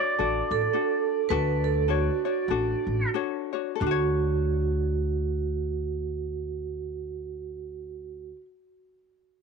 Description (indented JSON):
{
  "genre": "Hawaiian",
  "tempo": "86-112 BPM",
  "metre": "4/4",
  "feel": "swing 60% on 8ths",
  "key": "D major",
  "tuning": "A4 = 440 Hz",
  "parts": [
    { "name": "pedal steel guitar", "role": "melody", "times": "0.0-3.1 s", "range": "D5", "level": "-30 LUFS", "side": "right 2 dB", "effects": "none" },
    { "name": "ukulele", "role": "accompaniment", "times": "0.0-8.4 s", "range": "D4 to C#5", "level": "-30 LUFS", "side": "left 16 dB", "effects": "none" },
    { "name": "upright bass", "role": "bass", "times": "0.2-8.3 s", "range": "A1 to D2", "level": "-29 LUFS", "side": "left 1 dB", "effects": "none" },
    { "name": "vibraphone with medium hard mallets", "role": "second line", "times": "0.5-8.3 s", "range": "F#4 to B4", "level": "-29 LUFS", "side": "right 12 dB", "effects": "slapback echo" }
  ],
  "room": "light reverb, studio reverb",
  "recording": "1960s-style stereo with parts hard left and right",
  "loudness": "-25 LUFS",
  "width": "side -5 dB against mid",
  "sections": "0.0-3.8 A section; 3.8-9.4 B section",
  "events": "slowing down 0.0-3.8",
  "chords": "0.0 Dmaj7"
}